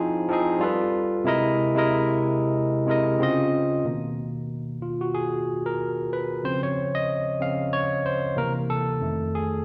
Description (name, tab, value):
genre	R&B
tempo	93 BPM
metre	4/4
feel	swing 55% on 16ths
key	unclear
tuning	A4 = 440 Hz
part	barky tine electric piano	solo	0.0-9.6 s	F2 to F5	-25 LUFS	equal	overdrive
room	wet recital hall reverb, RT60 1.4 s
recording	recorded in a church or concert hall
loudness	-25 LUFS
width	mono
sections	0.0-3.8 A section; 3.8-9.6 B section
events	tine electric piano solo 3.8-9.6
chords	0.0 Fm7; 0.6 G9; 1.3 C7alt; 3.2 Dbmaj9; 3.8 Cbmaj7; 6.4 Dbmaj7; 8.4 C7; 9.0 F7#9